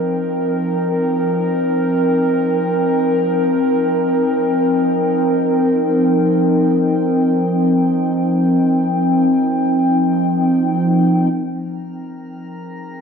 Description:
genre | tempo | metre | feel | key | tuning
ambient | free time | none | none | unclear | A4 = 440 Hz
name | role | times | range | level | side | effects
warbly tape-like pad | sustained chords | 0.0-13.0 s | F3 to G5 | -14 LUFS | equal | chorus, built-in reverb
drifting glass-harmonics texture | texture | 11.8-13.0 s | Bb4 to Bb5 | -38 LUFS | left 2 dB | chorus, built-in reverb
room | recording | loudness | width
wet scoring stage reverb, RT60 2.1 s | none | -14 LUFS | side -6 dB against mid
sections
0.0-11.3 A section; 11.3-13.0 B section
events
none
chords
0.0 Cm7/F; 11.3 Fm9

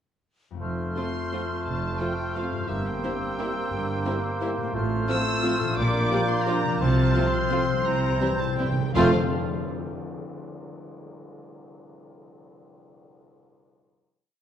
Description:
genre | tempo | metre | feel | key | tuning
classical, orchestral ballroom waltz | 158-188 BPM | 3/4 | rubato | F major | A4 = 440 Hz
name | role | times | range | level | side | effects
concert harp | arpeggios | 0.5-9.2 s | F2 to G4 | -33 LUFS | left 6 dB | none
flute section | second line | 0.6-9.2 s | E6 to G6 | -36 LUFS | left 1 dB | none
warm clarinet | second line | 0.6-9.1 s | E4 to G4 | -35 LUFS | equal | none
warm oboe | second line | 0.6-9.1 s | C5 to D5 | -34 LUFS | right 1 dB | none
clear bassoon | accompaniment | 0.6-9.1 s | A3 to C4 | -31 LUFS | right 1 dB | none
warm chamber cello section | bass | 0.6-9.2 s | F2 to C3 | -31 LUFS | right 1 dB | none
warm chamber double bass section | bass | 0.6-9.2 s | F1 to C2 | -31 LUFS | right 2 dB | none
rich chamber violin section | melody | 1.0-9.1 s | E5 to E6 | -34 LUFS | left 2 dB | none
warm chamber violin section | second line | 1.0-9.2 s | F4 to D5 | -36 LUFS | left 2 dB | none
warm studio viola section | accompaniment | 1.0-9.2 s | G3 to F4 | -33 LUFS | right 1 dB | none
clear trombone section | sustained chords | 1.0-9.1 s | E3 to Bb3 | -35 LUFS | right 3 dB | none
mellow French horn section | sustained chords | 1.0-9.1 s | C4 to G4 | -34 LUFS | left 3 dB | none
cymbal swell and tam-tam | percussion | 6.8-10.3 s | none | -39 LUFS | left 2 dB | none
timpani | percussion | 6.8-9.1 s | F2 to C3 | -32 LUFS | right 1 dB | none
room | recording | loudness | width
wet concert hall reverb, RT60 2.0 s | none | -23 LUFS | side -9 dB against mid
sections
0.6-9.0 A section; 9.0-10.0 final chord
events
timpani fill 7.9-9.0; band accent 9.0-9.3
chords
0.6 F; 2.7 C7/G; 4.7 F/A; 5.8 Bb6; 6.8 F/C; 7.9 C7; 9.0 F

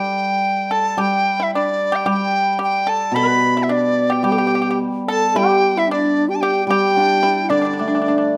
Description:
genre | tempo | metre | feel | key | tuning
chinese traditional, Chinese chamber ensemble | 110 BPM | 2/4 | rubato | unclear | A4 = 440 Hz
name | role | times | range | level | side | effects
bright reedy large dizi | melody | 0.0-8.3 s | D5 to B5 | -21 LUFS | equal | none
pipa | second line | 0.0-8.3 s | D4 to B4 | -26 LUFS | equal | none
hammered dulcimer | accompaniment | 0.0-8.4 s | B2 to G4 | -24 LUFS | equal | none
low xiao | second line | 4.2-8.4 s | D4 to A4 | -23 LUFS | equal | none
room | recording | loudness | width
moderate recital hall reverb, RT60 1.3 s | close, detailed microphones | -18 LUFS | mono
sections
0.0-8.4 A section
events
none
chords
none

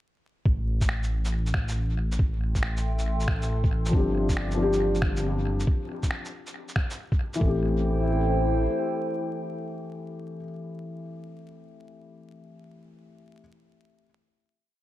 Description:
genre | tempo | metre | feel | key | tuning
future garage | 138 BPM | 4/4 | swing 65% on 16ths | A minor | A4 = 442 Hz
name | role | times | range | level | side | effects
dark detuned saw bass | bass | 0.5-8.7 s | G1 to A1 | -26 LUFS | equal | tube saturation, sidechain pumping
electronic kick drum | drums | 0.5-7.5 s | none | -25 LUFS | equal | none
electronic shaker and finger snaps | drums | 0.8-7.4 s | none | -35 LUFS | equal | analog delay
warbly tape-like pad | sustained chords | 2.7-10.4 s | E4 to C6 | -31 LUFS | right 1 dB | chorus, built-in reverb, sidechain pumping
felt-muted upright piano | accompaniment | 3.9-13.4 s | E3 to G4 | -30 LUFS | left 3 dB | sidechain pumping, tape echo
room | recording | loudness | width
light reverb | echo-heavy mix, vinyl crackle | -24 LUFS | side -15 dB against mid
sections
0.5-7.4 groove; 7.4-10.9 final chord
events
none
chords
0.5 Am7; 3.9 G7sus4; 7.4 Am7

